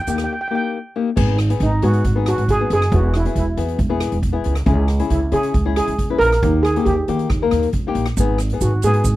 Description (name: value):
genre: calypso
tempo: 137 BPM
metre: 4/4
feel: straight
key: G# minor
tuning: A4 = 440 Hz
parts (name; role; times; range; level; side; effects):
- steel pan; melody; 0.0-9.2 s; D#4 to G5; -20 LUFS; right 2 dB; none
- flamenco guitar; accompaniment; 0.1-9.0 s; A#3 to B4; -22 LUFS; left 6 dB; none
- upright bass; bass; 0.1-9.2 s; E1 to D#3; -19 LUFS; right 1 dB; none
- street-band drum kit; drums; 0.1-9.2 s; crash cymbal, hi-hat, kick drum, rim click; -23 LUFS; right 1 dB; none
- tube shaker; percussion; 0.1-0.2, 8.2-9.2 s; none; -31 LUFS; right 18 dB; none
room: little or no reverb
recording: dry, close 1970s-style studio recording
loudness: -16 LUFS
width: side -16 dB against mid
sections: 0.0-1.2 A section; 1.2-9.2 B section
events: none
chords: 0.0 D#; 1.2 G#m7; 2.9 E; 4.7 C#m; 6.4 D#; 8.2 G#m